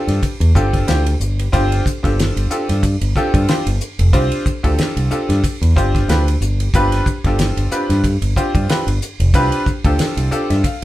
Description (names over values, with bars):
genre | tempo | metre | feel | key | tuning
electric jazz fusion | 92 BPM | 4/4 | swing 56% on 16ths | G mixolydian | A4 = 439 Hz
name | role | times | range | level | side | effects
bright baby grand piano | accompaniment | 0.0-10.8 s | C4 to F5 | -20 LUFS | equal | none
modern bright fingered electric bass | bass | 0.1-10.7 s | F1 to G2 | -16 LUFS | equal | none
damped 70s drum kit | drums | 0.1-10.8 s | hi-hat, kick drum, ride cymbal, snare drum | -20 LUFS | equal | none
room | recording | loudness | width
moderate studio reverb, RT60 0.6 s | band playing live in one room | -14 LUFS | side -15 dB against mid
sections
0.0-10.8 A section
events
grand piano fill 10.0-10.8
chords
0.0 G9sus4